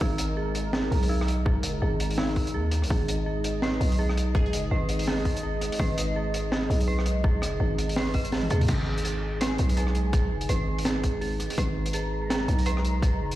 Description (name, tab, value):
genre	half-time drum and bass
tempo	166 BPM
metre	4/4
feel	swing 59% on 16ths, half-time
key	G# minor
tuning	A4 = 441 Hz
part	dark analog pad	sustained chords	0.0-13.4 s	G#3 to A#5	-34 LUFS	equal	chorus, vintage 12-bit sampler grit, sidechain pumping
part	dark detuned synth bell	arpeggios	0.0-13.4 s	D#4 to D#5	-33 LUFS	right 3 dB	chorus, tremolo, tape echo
part	growling 808-style bass	bass	0.0-13.4 s	F#1 to D#2	-27 LUFS	equal	none
part	electronic kick drum	drums	0.0-13.1 s	none	-25 LUFS	equal	overdrive
part	crunchy breakbeat drum kit	drums	0.2-13.4 s	crash cymbal, hi-hat, rim click, snare drum, toms	-31 LUFS	equal	none
part	glassy wavetable pluck	melody	4.4-4.5 s	G#4	-38 LUFS	equal	chorus, digital delay
room	light reverb, studio ambience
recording	played on a big sound system in a bare room, large studio reverb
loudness	-24 LUFS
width	side -14 dB against mid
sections	0.0-8.7 A section; 8.7-13.4 A section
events	drop 0.0-8.7, 8.7-13.4; drum fill 8.3-8.7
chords	0.0 G#5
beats	| 0.01 0.37 0.73 1.10 | 1.46 1.82 2.18 2.54 | 2.90 3.27 3.63 3.99 | 4.35 4.71 5.07 5.43 | 5.79 6.16 6.52 6.88 | 7.24 7.60 7.96 8.33 | 8.69 9.05 9.41 9.77 | 10.13 10.49 10.86 11.22 | 11.58 11.94 12.30 12.66 | 13.02